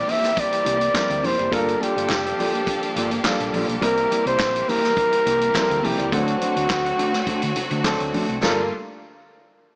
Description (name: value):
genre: disco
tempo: 104 BPM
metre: 4/4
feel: straight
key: G dorian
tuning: A4 = 438 Hz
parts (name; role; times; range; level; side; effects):
- breathy flugelhorn; melody; 0.0-8.7 s; F#4 to E5; -21 LUFS; equal; slapback echo
- warm grand piano; accompaniment; 0.0-8.7 s; E3 to Bb4; -28 LUFS; equal; none
- clear studio string section; sustained chords; 0.0-8.7 s; D3 to A4; -28 LUFS; equal; none
- mellow electric guitar; accompaniment; 0.1-8.6 s; A3 to D5; -27 LUFS; equal; none
- vintage drum kit; drums; 0.1-8.6 s; handclaps, hi-hat, kick drum, snare drum; -27 LUFS; equal; none
- congas; percussion; 0.1-8.7 s; none; -35 LUFS; equal; none
- hollow-body short-scale fingered electric bass; bass; 0.7-8.7 s; F1 to D3; -33 LUFS; equal; none
- group handclap; percussion; 1.0-8.7 s; none; -34 LUFS; equal; none
room: light reverb, small room reverb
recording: small speaker sound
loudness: -18 LUFS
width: side -38 dB against mid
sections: 0.0-8.4 A section; 8.4-9.8 B section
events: none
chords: 0.0 C7; 1.5 Gm9; 3.8 C7; 6.1 D7; 8.4 Gm9